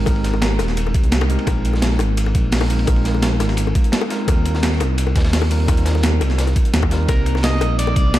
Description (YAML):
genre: liquid drum and bass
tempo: 171 BPM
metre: 4/4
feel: straight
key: unclear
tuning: A4 = 439 Hz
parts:
  - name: bell-like tine electric piano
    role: accompaniment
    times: 0.0-8.2 s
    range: G3 to Bb4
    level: -25 LUFS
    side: equal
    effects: fast stereo tremolo, vintage 12-bit sampler grit, tape echo
  - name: smooth synth bass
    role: bass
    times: 0.0-8.2 s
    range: Eb1 to Eb2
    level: -18 LUFS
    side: equal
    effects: none
  - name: breakbeat sampler-style drum kit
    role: drums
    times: 0.1-8.2 s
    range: hi-hat, snare drum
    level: -23 LUFS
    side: equal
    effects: overdrive
  - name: crunchy breakbeat drum kit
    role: drums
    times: 0.1-8.2 s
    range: hi-hat, ride cymbal, snare drum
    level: -30 LUFS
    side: equal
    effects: high-pass filter on cymbals, high-pass filter on hats, high-pass filter on snare, high-pass filter on room
  - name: electronic kick drum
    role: drums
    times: 0.1-8.0 s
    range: none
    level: -18 LUFS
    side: equal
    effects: overdrive
  - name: bongos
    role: percussion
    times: 0.1-7.9 s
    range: none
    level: -28 LUFS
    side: left 6 dB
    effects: none
  - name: electric guitar at the edge of break-up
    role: melody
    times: 7.1-8.2 s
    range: Bb4 to Eb5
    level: -24 LUFS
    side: right 1 dB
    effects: tape echo
room: light reverb, small room ambience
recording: dark, warm production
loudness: -15 LUFS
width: side -14 dB against mid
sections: 0.0-8.2 A section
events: none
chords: 0.0 Abmaj9; 1.5 Bb9sus4; 4.3 Eb69; 7.1 Cm9